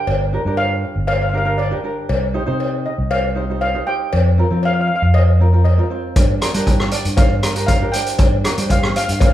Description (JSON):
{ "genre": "calypso", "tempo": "118 BPM", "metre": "4/4", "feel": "straight", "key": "unclear", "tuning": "A4 = 441 Hz", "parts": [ { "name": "steel pan", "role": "melody", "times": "0.0-9.3 s", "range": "D5 to G5", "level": "-22 LUFS", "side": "right 1 dB", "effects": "none" }, { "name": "tenor ukulele", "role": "accompaniment", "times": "0.0-9.1 s", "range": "C4 to C5", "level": "-25 LUFS", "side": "right 2 dB", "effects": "none" }, { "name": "fingered electric bass", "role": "bass", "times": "0.1-9.3 s", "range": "G1 to G3", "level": "-18 LUFS", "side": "equal", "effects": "none" }, { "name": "cowbell", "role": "percussion", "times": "0.1-9.3 s", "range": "none", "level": "-24 LUFS", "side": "left 3 dB", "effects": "none" }, { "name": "street-band drum kit", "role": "drums", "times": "6.2-9.3 s", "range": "hi-hat, kick drum, rim click", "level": "-16 LUFS", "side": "equal", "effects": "none" } ], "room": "moderate large studio reverb, RT60 1.3 s", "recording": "band playing live in one room", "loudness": "-15 LUFS", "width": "side -12 dB against mid", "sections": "0.0-9.3 A section", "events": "none", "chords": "0.0 Gm7; 2.1 Cm; 4.1 F7sus4; 6.2 Gm7" }